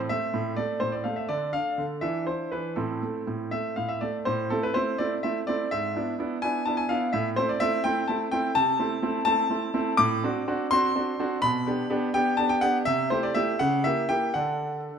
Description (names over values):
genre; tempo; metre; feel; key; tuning
classical-period piano sonatina; 83 BPM (dotted quarters); 6/8; straight; A minor, G major from 10.0 s; A4 = 443 Hz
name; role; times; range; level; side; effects
clear grand piano; solo; 0.0-15.0 s; G#2 to D6; -24 LUFS; equal; none
room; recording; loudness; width
moderate recital hall reverb, RT60 1.8 s; none; -24 LUFS; side -7 dB against mid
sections
0.0-4.3 A section; 4.3-15.0 B section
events
none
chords
0.0 Am; 1.3 Dm; 2.0 Cmaj9/E; 2.8 Am; 5.7 E7/G#; 7.1 Am; 8.6 Am/C; 10.0 D7/A; 11.4 G/B; 12.9 Am7/C; 13.6 C#dim7; 14.4 D